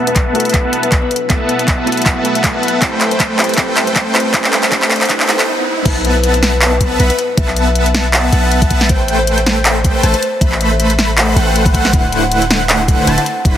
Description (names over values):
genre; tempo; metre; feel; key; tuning
future bass; 158 BPM; 4/4; swing 55% on 16ths, half-time; unclear; A4 = 440 Hz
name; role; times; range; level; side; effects
soft round pluck; accompaniment; 0.0-5.5 s; A3 to B5; -24 LUFS; right 3 dB; chorus, sidechain pumping, ping-pong delay
ethereal airy pad; sustained chords; 0.0-5.5 s; A2 to A4; -30 LUFS; equal; ensemble chorus, built-in reverb, sidechain pumping
supersaw chords; riff; 0.0-13.6 s; D3 to B5; -17 LUFS; equal; sidechain pumping, low-pass filter
riser and swell; sound effects; 2.5-5.9 s; none; -26 LUFS; right 1 dB; none
kalimba; melody; 0.1-13.6 s; B4 to B5; -20 LUFS; left 2 dB; sidechain pumping, ping-pong delay
dubstep drum kit; drums; 0.1-13.5 s; crash cymbal, handclaps, hi-hat, snare drum; -16 LUFS; equal; overdrive, high-pass filter on snare, high-pass filter on hats, high-pass filter on cymbals
electronic kick drum; drums; 0.2-13.5 s; none; -15 LUFS; equal; overdrive
airy dreamy lead; arpeggios; 5.9-13.6 s; F#5 to B5; -23 LUFS; left 1 dB; chorus, sidechain pumping, ping-pong delay
warm 808-style bass; bass; 5.9-13.6 s; D1 to B1; -16 LUFS; equal; sidechain pumping
room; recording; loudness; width
light reverb; heavily compressed radio sound, multiband compression, high-pass filter; -11 LUFS; side -10 dB against mid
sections
0.0-5.9 A section; 5.9-13.6 B section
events
build-up 0.0-5.9; drum fill 0.0-5.5; filter sweep on supersaw synth 0.0-5.9; filter sweep 0.0-5.9; swell 5.1-5.9; stop 5.5-5.9; drop 5.9-13.6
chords
0.0 B7sus4; 2.8 Am7; 5.9 B7sus4; 8.9 Am7; 11.9 D13